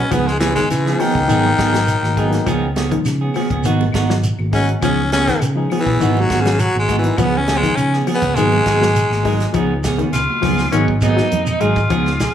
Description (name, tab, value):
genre	afrobeat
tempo	102 BPM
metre	4/4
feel	straight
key	Db mixolydian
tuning	A4 = 440 Hz
part	raspy baritone saxophone	melody	0.0-9.5 s	Db3 to Db4	-18 LUFS	left 1 dB	plate reverb
part	fingered electric bass	bass	0.0-12.3 s	Ab1 to Db3	-20 LUFS	equal	none
part	reed electric piano	accompaniment	0.1-12.2 s	F3 to Eb4	-27 LUFS	left 4 dB	none
part	semi-hollow electric guitar	arpeggios	0.1-12.1 s	Eb3 to Ab3	-24 LUFS	left 7 dB	none
part	clean electric guitar	stabs	0.1-12.3 s	F3 to Ab4	-22 LUFS	right 5 dB	none
part	warm soul drum kit	drums	0.1-12.3 s	hi-hat, kick drum, snare drum	-24 LUFS	equal	none
part	claves	percussion	0.1-12.1 s	none	-39 LUFS	left 7 dB	none
part	congas	percussion	0.1-12.1 s	none	-27 LUFS	right 3 dB	none
part	shekere	percussion	0.1-12.3 s	none	-26 LUFS	right 2 dB	none
part	raspy tenor saxophone	melody	10.1-12.3 s	Db4 to F4	-20 LUFS	equal	slapback echo, plate reverb
room	moderate large studio reverb, RT60 0.9 s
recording	small room ambience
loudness	-14 LUFS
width	side -9 dB against mid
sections	0.0-9.5 A section; 9.5-12.3 B section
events	baritone saxophone solo 0.0-9.5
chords	0.1 Db7; 1.3 Abm7; 2.5 Db7; 3.6 Abm7; 4.8 Db7; 6.0 Abm7; 7.2 Db7; 8.4 Abm7; 9.5 Db7; 10.7 Abm7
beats	| 0.11 0.70 1.29 1.88 | 2.47 3.06 3.65 4.24 | 4.83 5.42 6.01 6.60 | 7.19 7.78 8.37 8.96 | 9.55 10.14 10.73 11.31 | 11.90